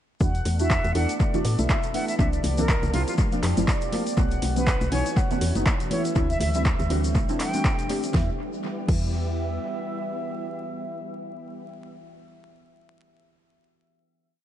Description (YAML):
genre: deep house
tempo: 121 BPM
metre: 4/4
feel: swing 57% on 16ths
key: E minor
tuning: A4 = 444 Hz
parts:
  - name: mellow horn-like synth lead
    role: melody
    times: 0.2-12.4 s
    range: D5 to G#5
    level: -36 LUFS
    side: right 1 dB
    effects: wide subtle chorus, dub echo
  - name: soft string machine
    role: sustained chords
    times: 0.2-11.7 s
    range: E3 to A4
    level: -35 LUFS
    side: equal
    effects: ensemble chorus, sidechain pumping
  - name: deep mellow chord stab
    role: stabs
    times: 0.2-12.4 s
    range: E3 to B4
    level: -30 LUFS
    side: equal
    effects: chorus, phaser, sidechain pumping, dub echo
  - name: woody FM bass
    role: bass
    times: 0.2-9.6 s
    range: F#1 to A2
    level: -26 LUFS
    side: equal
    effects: sidechain pumping
  - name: electronic kick drum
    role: drums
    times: 0.2-9.0 s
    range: none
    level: -24 LUFS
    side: equal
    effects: overdrive
  - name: tube shaker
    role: percussion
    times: 0.2-8.1 s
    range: none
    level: -40 LUFS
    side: left 5 dB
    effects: tape echo
  - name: deep dark ambient pad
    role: texture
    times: 1.5-11.9 s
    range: C4 to A5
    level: -37 LUFS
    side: equal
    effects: chorus, built-in reverb, sidechain pumping
  - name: deep house drum kit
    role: drums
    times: 0.3-9.0 s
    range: crash cymbal, handclaps, hi-hat, snare drum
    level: -32 LUFS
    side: equal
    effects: overdrive, tape echo
  - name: congas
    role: percussion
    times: 0.5-8.0 s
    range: none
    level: -34 LUFS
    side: left 2 dB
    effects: sidechain pumping on perc, tape echo
  - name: bright concert flute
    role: melody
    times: 0.6-7.9 s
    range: F4 to G5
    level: -32 LUFS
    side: right 1 dB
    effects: analog delay
room: digital ambience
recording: echo-heavy mix, vinyl crackle, nothing above 10.8 kHz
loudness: -22 LUFS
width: side -11 dB against mid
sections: 0.2-8.1 drop; 8.1-12.1 final chord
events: drop 0.2-8.1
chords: 0.2 E9sus4; 2.2 C9sus4; 4.2 B9sus4; 6.2 D9sus4; 8.1 Em